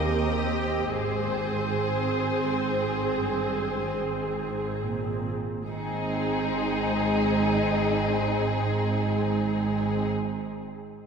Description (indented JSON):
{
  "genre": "classical, slow romantic movement for string orchestra",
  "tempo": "34-49 BPM",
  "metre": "3/4",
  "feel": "rubato",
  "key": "Ab major",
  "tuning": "A4 = 441 Hz",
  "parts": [
    { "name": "muted studio violin section", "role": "melody", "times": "0.0-10.1 s", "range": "Ab4 to Eb5", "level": "-33 LUFS", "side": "left 5 dB", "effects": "none" },
    { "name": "muted chamber violin section", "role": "second line", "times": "0.0-10.1 s", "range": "Eb4 to Bb4", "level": "-31 LUFS", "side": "left 2 dB", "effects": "none" },
    { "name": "muted symphonic viola section", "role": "accompaniment", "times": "0.0-10.1 s", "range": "Ab3 to Ab4", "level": "-29 LUFS", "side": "right 2 dB", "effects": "none" },
    { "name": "muted chamber cello section", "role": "bass", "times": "0.0-10.1 s", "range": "Eb2 to Bb2", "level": "-34 LUFS", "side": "right 5 dB", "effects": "none" },
    { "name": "muted symphonic double bass section", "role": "bass", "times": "0.0-10.1 s", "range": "Ab1 to Eb2", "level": "-32 LUFS", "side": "right 3 dB", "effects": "none" }
  ],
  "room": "wet church reverb, RT60 3.2 s",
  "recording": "none",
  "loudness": "-24 LUFS",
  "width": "side -6 dB against mid",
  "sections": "0.0-5.7 A section; 5.7-10.7 B section",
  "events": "slowing down 0.0-5.7",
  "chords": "0.0 Eb6; 1.0 Ab"
}